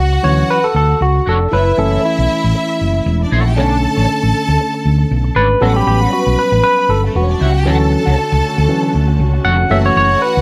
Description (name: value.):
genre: disco.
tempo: 117 BPM.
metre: 4/4.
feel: swing 56% on 16ths.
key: unclear.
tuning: A4 = 440 Hz.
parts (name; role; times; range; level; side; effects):
clear studio string section; second line; 0.0-10.4 s; A3 to B5; -22 LUFS; equal; none.
electric guitar at the edge of break-up; accompaniment; 0.0-10.4 s; D4 to F#5; -27 LUFS; equal; wah, tremolo.
hollow-body short-scale fingered electric bass; bass; 0.0-10.4 s; E1 to D2; -17 LUFS; equal; none.
barky tine electric piano; accompaniment; 0.2-10.4 s; D3 to F#5; -18 LUFS; equal; overdrive.
dark studio string section; sustained chords; 7.6-10.4 s; D3 to F#4; -25 LUFS; equal; none.
room: moderate large studio reverb, RT60 1.2 s, studio ambience.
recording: none.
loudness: -14 LUFS.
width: mono.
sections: 0.0-10.4 A section.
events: tine electric piano solo 0.0-10.4.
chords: 0.0 Dmaj7; 1.5 F#m7; 3.6 Bm9; 5.6 A13; 7.7 Dmaj7; 9.7 F#m7.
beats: 0.50 1.01 | 1.52 2.04 2.55 3.06 | 3.57 4.08 4.60 5.11 | 5.62 6.13 6.64 7.15 | 7.66 8.17 8.68 9.19 | 9.71 10.22.